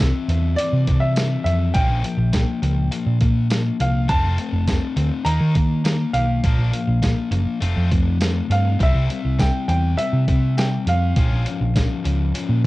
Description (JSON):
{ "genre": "indie rock", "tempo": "102 BPM", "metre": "4/4", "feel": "straight", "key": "unclear", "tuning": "A4 = 440 Hz", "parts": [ { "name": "clear upright piano", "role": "melody", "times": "0.0-12.7 s", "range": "D5 to Bb5", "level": "-27 LUFS", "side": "equal", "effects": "cassette tape, tape echo" }, { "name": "high-gain distorted guitar", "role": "riff", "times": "0.0-12.6 s", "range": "Eb3 to F4", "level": "-26 LUFS", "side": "left 6 dB", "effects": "distortion" }, { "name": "hollow-body short-scale picked electric bass", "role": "bass", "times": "0.0-12.7 s", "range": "F1 to Eb3", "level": "-19 LUFS", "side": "equal", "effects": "none" }, { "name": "dusty soul sampler-style drum kit", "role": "drums", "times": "0.0-12.7 s", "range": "hi-hat, kick drum, snare drum, tambourine", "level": "-21 LUFS", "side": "equal", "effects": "cassette tape" }, { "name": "twangy electric guitar", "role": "riff", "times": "4.1-12.7 s", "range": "Bb2 to A4", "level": "-45 LUFS", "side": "right 8 dB", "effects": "none" } ], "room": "little or no reverb", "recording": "home recording on cassette", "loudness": "-17 LUFS", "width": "side -18 dB against mid", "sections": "0.0-12.7 A section", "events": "none", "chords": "0.0 C; 1.8 Bbm6; 4.1 F; 5.3 Ebmaj7; 6.4 Bb; 7.6 F6; 8.8 C7; 11.2 Bbm6" }